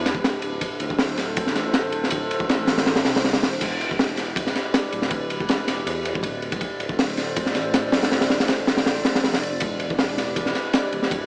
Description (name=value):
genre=drum and bass, jungle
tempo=160 BPM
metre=4/4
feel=straight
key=E phrygian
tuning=A4 = 442 Hz
part: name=warbly tape-like pad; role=sustained chords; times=0.0-11.3 s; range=D4 to D5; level=-28 LUFS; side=equal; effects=chorus, built-in reverb, cassette tape
part: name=dark detuned saw bass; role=bass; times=0.0-11.3 s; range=D1 to E2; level=-31 LUFS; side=equal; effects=none
part: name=crunchy breakbeat drum kit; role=drums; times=0.1-11.2 s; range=crash cymbal, hi-hat, kick drum, ride cymbal, snare drum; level=-21 LUFS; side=equal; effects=cassette tape
room=moderate spring reverb, RT60 1.8 s, studio reverb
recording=home recording on cassette, small speaker sound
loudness=-20 LUFS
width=side -39 dB against mid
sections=0.0-3.6 A section; 3.6-11.3 A section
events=drop 0.0-3.6, 3.6-11.3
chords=0.0 Em7; 0.6 Dm7; 3.6 Em7; 6.6 Dm7; 9.6 Em7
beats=0.24 | 0.61 0.99 1.36 1.74 | 2.11 2.49 2.86 3.24 | 3.61 3.99 4.36 4.74 | 5.11 5.49 5.86 6.24 | 6.61 6.99 7.36 7.74 | 8.11 8.49 8.86 9.24 | 9.61 9.99 10.36 10.74 | 11.11